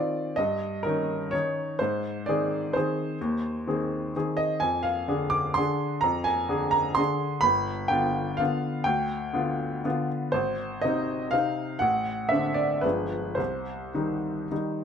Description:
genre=classical, piano waltz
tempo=105-135 BPM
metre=3/4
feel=rubato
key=unclear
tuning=A4 = 440 Hz
part: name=clear upright piano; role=solo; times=0.0-14.8 s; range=G1 to D6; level=-25 LUFS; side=equal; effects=none
room=light reverb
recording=minimal, uncompressed stereo recording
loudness=-25 LUFS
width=side -7 dB against mid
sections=0.0-14.8 A section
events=none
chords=0.4 Eb7/G; 1.8 Ab; 4.6 Ddim/F; 7.5 G7; 10.3 Ab; 11.8 D7/A; 12.8 G7b9; 13.4 Cm

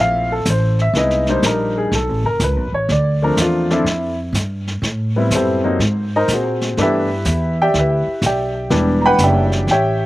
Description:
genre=jazz piano trio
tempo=124 BPM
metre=4/4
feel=swing 68% on 8ths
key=D minor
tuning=A4 = 440 Hz
part: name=clear concert grand piano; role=melody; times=0.0-10.1 s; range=E3 to B5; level=-17 LUFS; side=equal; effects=slapback echo
part: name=upright bass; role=bass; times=0.0-10.1 s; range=E1 to A#2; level=-19 LUFS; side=equal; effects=none
part: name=vintage brush drum kit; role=drums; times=0.5-10.1 s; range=brushed snare drum, hi-hat, snare drum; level=-25 LUFS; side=equal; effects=none
room=little or no reverb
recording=recorded outdoors, with no room sound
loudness=-15 LUFS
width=side -17 dB against mid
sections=0.0-10.1 A section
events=grand piano solo 0.0-10.1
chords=0.0 Dm7 (rootless); 0.9 Cm9; 1.9 B5; 2.9 Dm11; 4.8 Am7; 5.8 G#9; 6.8 G6; 8.7 Em9

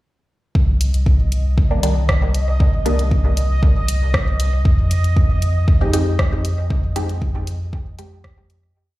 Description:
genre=dub techno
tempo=117 BPM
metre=4/4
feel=straight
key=C minor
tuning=A4 = 440 Hz
part: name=pure sine sub bass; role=bass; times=0.6-8.7 s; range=C2 to F2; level=-19 LUFS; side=equal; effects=sidechain pumping
part: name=electronic kick drum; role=drums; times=0.6-8.3 s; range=none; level=-16 LUFS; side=equal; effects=none
part: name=bubbling stepped-filter texture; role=texture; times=0.6-8.8 s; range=Eb5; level=-30 LUFS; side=right 3 dB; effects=chorus, built-in reverb, sidechain pumping
part: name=deep house drum kit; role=drums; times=0.8-8.6 s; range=hi-hat, rim click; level=-26 LUFS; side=equal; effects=dub echo
part: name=filtered dub chord stab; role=stabs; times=1.7-8.1 s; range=Eb3 to G4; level=-25 LUFS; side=equal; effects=phaser, sidechain pumping, dub echo
room=digital ambience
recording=played on a big sound system in a bare room, large studio reverb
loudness=-15 LUFS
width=side -17 dB against mid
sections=0.6-8.8 groove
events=fade-out 6.0-8.8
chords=0.6 Cm; 4.7 F7(no3)

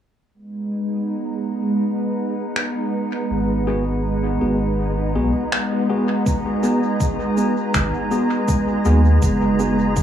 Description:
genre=ambient dub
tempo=81 BPM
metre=4/4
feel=swing 55% on 16ths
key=G# minor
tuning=A4 = 435 Hz
part: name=soft additive organ-like pad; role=sustained chords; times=0.5-10.0 s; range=G#3 to A#5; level=-21 LUFS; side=equal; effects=ensemble chorus, built-in reverb
part: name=drifting glass-harmonics texture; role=texture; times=0.8-10.0 s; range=B3 to G#4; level=-29 LUFS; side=right 3 dB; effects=chorus, built-in reverb
part: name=electronic finger snaps and shaker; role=drums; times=2.6-10.0 s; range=none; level=-27 LUFS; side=equal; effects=dub echo
part: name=soft dub sub bass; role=bass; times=3.3-10.0 s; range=F#1 to D#2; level=-20 LUFS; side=equal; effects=none
part: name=bright tine electric piano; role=stabs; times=3.7-9.8 s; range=B3 to G#4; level=-24 LUFS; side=left 1 dB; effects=medium stereo tremolo, dub echo
part: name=electronic kick drum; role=drums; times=6.3-10.0 s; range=none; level=-22 LUFS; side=equal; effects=none
room=light reverb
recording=echo-heavy mix, small room reverb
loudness=-18 LUFS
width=side -10 dB against mid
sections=0.3-6.3 A section; 6.3-10.0 B section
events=filter sweep on ambient pad 0.3-6.3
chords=0.3 G#m; 6.3 G#m7

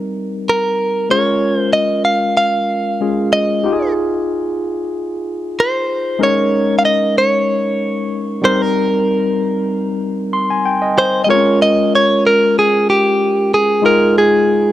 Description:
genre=soul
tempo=94 BPM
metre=4/4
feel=swing 54% on 16ths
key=Bb dorian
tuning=A4 = 440 Hz
part: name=barky tine electric piano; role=accompaniment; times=0.0-14.7 s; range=G3 to C6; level=-17 LUFS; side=left 1 dB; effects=auto-pan
part: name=direct-recorded clean electric guitar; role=melody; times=0.5-14.7 s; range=G4 to F5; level=-14 LUFS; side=right 1 dB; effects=none
room=light reverb, digital ambience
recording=none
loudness=-13 LUFS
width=side -13 dB against mid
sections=0.0-1.1 A section; 1.1-11.3 B section; 11.3-14.7 C section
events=tine electric piano fill 10.0-11.3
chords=0.0 Cm7; 1.1 Bbm7; 3.7 Fm7; 6.2 Eb7sus4; 8.4 Cm7; 11.3 Bbm7; 13.8 Fm7

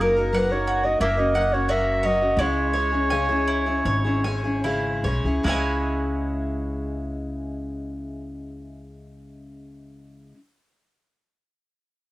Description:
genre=acoustic folk duo or small band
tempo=70-92 BPM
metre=4/4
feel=straight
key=C# dorian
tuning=A4 = 441 Hz
part: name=mellow clarinet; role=melody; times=0.0-4.6 s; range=A#4 to E5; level=-24 LUFS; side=equal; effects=cassette tape, tape echo
part: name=picked steel-string acoustic guitar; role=accompaniment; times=0.0-10.4 s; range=C#3 to A#4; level=-28 LUFS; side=left 2 dB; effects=cassette tape
part: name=mandolin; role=arpeggios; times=0.0-10.4 s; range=G#3 to G#5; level=-28 LUFS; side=right 2 dB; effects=cassette tape
part: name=upright bass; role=bass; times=0.0-10.3 s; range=F#1 to C#2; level=-28 LUFS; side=equal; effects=none
room=light reverb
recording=home recording on cassette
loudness=-21 LUFS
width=side -17 dB against mid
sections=0.0-5.5 A section; 5.5-8.9 B section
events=slowing down 0.0-5.5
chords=0.0 D#m/F#; 1.0 F#; 2.4 C#m

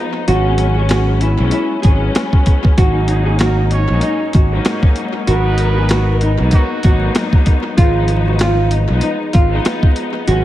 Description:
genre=hip hop, boom-bap hip-hop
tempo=96 BPM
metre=4/4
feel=swing 58% on 16ths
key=G# minor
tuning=A4 = 440 Hz
part: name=nylon-string guitar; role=melody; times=0.0-10.4 s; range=D#4 to G#4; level=-20 LUFS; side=right 1 dB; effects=high-pass filter, low-pass filter, tape echo
part: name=warm symphonic string section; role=accompaniment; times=0.0-10.4 s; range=G#2 to A#4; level=-20 LUFS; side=left 2 dB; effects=high-pass filter, low-pass filter, tape echo
part: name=fingered electric bass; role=bass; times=0.3-10.4 s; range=G#1 to B1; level=-15 LUFS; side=equal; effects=none
part: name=boom bap sampler-style drum kit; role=drums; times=0.3-10.4 s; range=hi-hat, kick drum, snare drum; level=-14 LUFS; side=equal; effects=none
part: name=warm trumpet section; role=stabs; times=3.1-7.1 s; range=F#3 to C#5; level=-27 LUFS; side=right 4 dB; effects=high-pass filter, low-pass filter, tape echo
room=small room ambience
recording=echo-heavy mix, vinyl crackle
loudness=-12 LUFS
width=side -14 dB against mid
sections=0.0-10.4 A section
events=kick muted 10.3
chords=0.3 E69/G#; 2.8 G#9sus4; 5.3 G#m7; 7.8 G#m6

